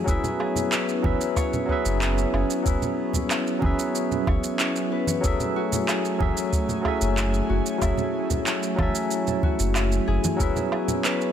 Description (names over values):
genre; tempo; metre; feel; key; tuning
sunset chillout; 93 BPM; 4/4; straight; F# minor; A4 = 440 Hz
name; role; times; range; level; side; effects
barky tine electric piano; accompaniment; 0.0-11.3 s; F#3 to G#5; -27 LUFS; right 1 dB; medium stereo tremolo, auto-pan, low-pass filter, digital delay
airy breathy pad; sustained chords; 0.0-11.3 s; F#3 to G#5; -29 LUFS; left 1 dB; chorus
Celtic harp; arpeggios; 0.0-11.3 s; E4 to C#5; -32 LUFS; left 8 dB; digital delay
warm sub bass; bass; 0.1-10.5 s; F#1; -25 LUFS; equal; none
electronic kick drum; drums; 0.1-10.5 s; none; -26 LUFS; equal; overdrive
electronic shaker, woodblock and handclaps; drums; 0.1-11.3 s; none; -29 LUFS; right 2 dB; overdrive
congas; percussion; 0.2-11.0 s; none; -31 LUFS; right 2 dB; none
room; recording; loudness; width
light reverb, digital ambience; none; -22 LUFS; side -9 dB against mid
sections
0.0-11.3 A section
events
filter sweep on tine electric piano 0.0-11.3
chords
0.1 C#m7/F#; 5.2 F#m9; 10.4 C#m7/F#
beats
| 0.08 0.72 1.37 2.01 | 2.66 3.30 3.95 4.59 | 5.24 5.88 6.53 7.17 | 7.82 8.46 9.11 9.76 | 10.40 11.04